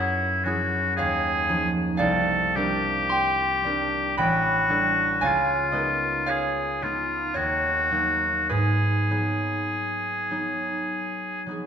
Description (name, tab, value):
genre	classical, impressionist duo for oboe and harp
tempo	50-58 BPM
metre	3/4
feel	rubato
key	G# dorian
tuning	A4 = 440 Hz
part	clear oboe	melody	0.0-11.4 s	E4 to A4	-24 LUFS	left 1 dB	none
part	concert harp	accompaniment	0.0-11.7 s	A1 to C6	-25 LUFS	right 1 dB	none
room	wet scoring stage reverb, RT60 1.5 s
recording	minimal, uncompressed stereo recording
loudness	-22 LUFS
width	side -8 dB against mid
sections	0.0-11.7 A section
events	none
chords	0.0 F#9sus4; 1.0 D#9sus4; 2.0 C9sus4; 4.2 A9sus4; 5.2 C#13; 7.4 D#m7; 8.5 G#m7